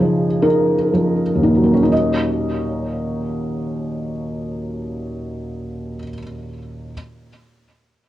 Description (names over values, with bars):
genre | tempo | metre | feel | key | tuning
neoclassical minimalist piano | 42 BPM (dotted quarters) | 6/8 | rubato | Eb minor | A4 = 440 Hz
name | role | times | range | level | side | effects
felt-muted upright piano | solo | 0.0-6.9 s | Eb2 to Eb5 | -18 LUFS | equal | tape echo
room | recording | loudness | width
moderate studio reverb, RT60 0.6 s | worn, warbling old tape, cassette tape, warbly pitch drift | -17 LUFS | side -14 dB against mid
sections
0.0-1.9 A section; 1.9-4.8 B section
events
slowing down 0.0-1.9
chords
0.0 Dbadd9; 1.9 Ebm7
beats
0.44 | 1.91 3.34